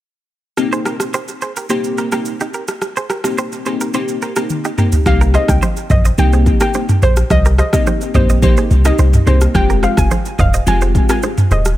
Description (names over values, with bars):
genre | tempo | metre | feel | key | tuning
afrobeats | 107 BPM | 4/4 | straight | unclear | A4 = 440 Hz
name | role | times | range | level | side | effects
glassy digital keys | accompaniment | 0.6-11.3 s | Ab3 to G4 | -19 LUFS | left 1 dB | chorus, dub echo
afro-pop drum kit | drums | 0.6-11.8 s | kick drum, rim click, shaker, toms | -16 LUFS | equal | none
direct-recorded clean electric guitar | riff | 0.7-11.6 s | Eb4 to Eb5 | -24 LUFS | right 4 dB | tremolo, dub echo
soft round pluck | melody | 5.1-11.6 s | C5 to Ab5 | -21 LUFS | equal | chorus, dub echo
warm 808-style bass | bass | 5.1-11.8 s | Eb1 to C2 | -13 LUFS | equal | none
congas and bongos | percussion | 5.1-11.6 s | none | -24 LUFS | right 2 dB | none
room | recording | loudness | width
little or no reverb | echo-heavy mix | -12 LUFS | side -14 dB against mid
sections
0.6-5.1 A section; 5.1-11.8 B section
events
drum fill 4.5-5.1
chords
0.6 Cm7; 9.5 Fmadd9